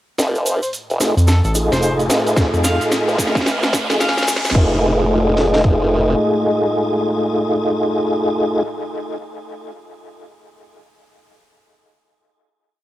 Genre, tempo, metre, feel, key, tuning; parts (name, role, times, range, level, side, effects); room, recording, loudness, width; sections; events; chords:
glitch hop; 110 BPM; 4/4; swing 62% on 16ths; A4 = 440 Hz
dark analog pad; sustained chords; 0.2-8.6 s; A3 to F6; -24 LUFS; left 1 dB; chorus, sidechain pumping, cassette tape
formant-sweep wobble bass; bass; 0.2-6.1 s; F1; -19 LUFS; equal; chorus, high-pass filter
drum and bass drum kit; drums; 0.2-4.7 s; crash cymbal, hi-hat, snare drum; -22 LUFS; equal; overdrive, studio reverb, cassette tape
tube shaker; percussion; 0.2-4.5 s; -27 LUFS; right 3 dB
riser; sound effects; 1.0-4.5 s; -27 LUFS; equal
clear harmonica; melody; 0.5-4.2 s; A4 to F5; -27 LUFS; equal; vintage 12-bit sampler grit, low-pass filter, cassette tape, tape echo
mellow tonewheel organ; stabs; 1.0-8.6 s; A3 to G#4; -19 LUFS; equal; chorus vibrato, fast rotary speaker, sidechain pumping, low-pass filter, cassette tape, tape echo
rubbery square bass; bass; 1.2-4.5 s; F1 to F2; -18 LUFS; equal; tube saturation
drum and bass drum kit; drums; 2.4-5.8 s; kick drum, snare drum; -17 LUFS; equal; overdrive, studio reverb, cassette tape
moderate booth ambience, RT60 0.2 s; home recording on cassette, high-pass filter; -15 LUFS; side -14 dB against mid
0.2-4.6 build; 4.6-8.9 final chord
build-up 0.2-4.6; drum fill 0.2-4.6; filter sweep on tonewheel organ 0.2-4.6; filter sweep on harmonica 0.2-4.6; filter sweep 0.2-4.6; riser 1.0-4.6
0.2 F7#9